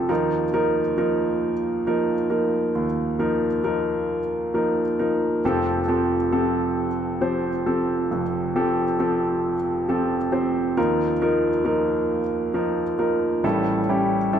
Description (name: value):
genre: folk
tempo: 45 BPM (dotted quarters)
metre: 6/8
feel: straight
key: unclear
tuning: A4 = 440 Hz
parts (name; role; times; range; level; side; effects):
- warm grand piano; solo; 0.0-14.4 s; F1 to C5; -20 LUFS; equal; none
room: moderate concert hall reverb, RT60 2.2 s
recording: none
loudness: -20 LUFS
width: side -8 dB against mid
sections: 0.0-14.4 A section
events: none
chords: 0.1 Ebsus2; 5.4 Fadd9; 10.8 Ebsus2; 13.4 A7